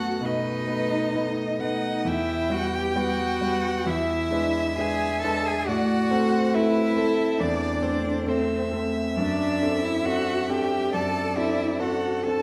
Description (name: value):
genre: classical, slow romantic movement for piano quartet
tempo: 67 BPM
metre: 4/4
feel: rubato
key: unclear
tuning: A4 = 440 Hz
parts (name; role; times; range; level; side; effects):
- rich violin; melody; 0.0-12.4 s; C5 to A5; -34 LUFS; equal; none
- rich cello; second line; 0.0-12.4 s; C4 to A4; -30 LUFS; equal; none
- rich violin; second line; 0.0-12.4 s; A4 to G5; -33 LUFS; equal; none
- clear grand piano; accompaniment; 0.0-12.4 s; E2 to B4; -28 LUFS; equal; none
room: wet recital hall reverb, RT60 1.4 s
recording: none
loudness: -25 LUFS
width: mono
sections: 0.0-12.4 A section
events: none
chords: 0.0 B7/F#; 2.1 Em; 3.9 E7; 5.7 Am; 9.2 D7/F#